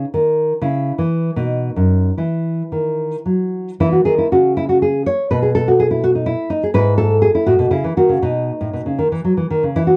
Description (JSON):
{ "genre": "classical, baroque-style dance for nylon-string guitar", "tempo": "72-86 BPM (dotted quarters)", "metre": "6/8", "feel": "rubato", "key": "E major", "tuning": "A4 = 440 Hz", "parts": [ { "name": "nylon-string guitar", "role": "solo", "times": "0.0-10.0 s", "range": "F#2 to C#5", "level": "-17 LUFS", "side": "equal", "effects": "none" } ], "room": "little or no reverb", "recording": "dry, close 1970s-style studio recording", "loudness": "-17 LUFS", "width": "mono", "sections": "0.0-3.8 A section; 3.8-10.0 B section", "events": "none", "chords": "0.0 N.C.; 0.6 C#m; 1.4 B; 2.2 Esus2; 3.8 C#madd11; 5.3 N.C.; 6.7 E/G#; 7.5 A69" }